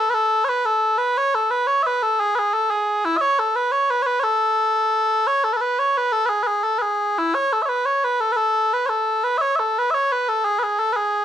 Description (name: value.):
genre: celtic folk.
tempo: 116 BPM (dotted quarters).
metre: 6/8.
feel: straight.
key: A major.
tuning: A4 = 440 Hz.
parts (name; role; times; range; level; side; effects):
mellow small bagpipes; solo; 0.0-11.2 s; E4 to E5; -18 LUFS; equal; none.
room: moderate studio reverb, RT60 0.6 s.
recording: dark, warm production.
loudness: -18 LUFS.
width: side -10 dB against mid.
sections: 0.0-5.3 A section; 5.3-11.2 A section.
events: none.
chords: none.